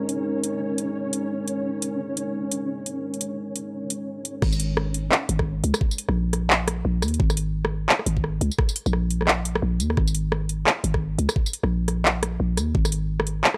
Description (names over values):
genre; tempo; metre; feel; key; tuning
half-time drum and bass; 173 BPM; 4/4; swing 59% on 16ths, half-time; unclear; A4 = 439 Hz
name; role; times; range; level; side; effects
deep dark ambient pad; sustained chords; 0.0-4.4 s; G#3 to C#5; -33 LUFS; equal; chorus, built-in reverb, sidechain pumping
flickering grainy texture; texture; 0.0-4.4 s; C#4; -33 LUFS; equal; built-in reverb
drum and bass drum kit; drums; 0.1-13.6 s; crash cymbal, handclaps, hi-hat, rim click, tambourine; -26 LUFS; equal; none
growling 808-style bass; bass; 4.4-13.4 s; G#1 to D#2; -26 LUFS; equal; none
electronic kick drum; drums; 4.4-12.8 s; none; -25 LUFS; equal; none
room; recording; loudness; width
digital ambience; dry, gritty hardware recording; -25 LUFS; mono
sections
0.0-4.4 A section; 4.4-13.6 B section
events
drop 4.4-13.6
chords
0.0 G#sus2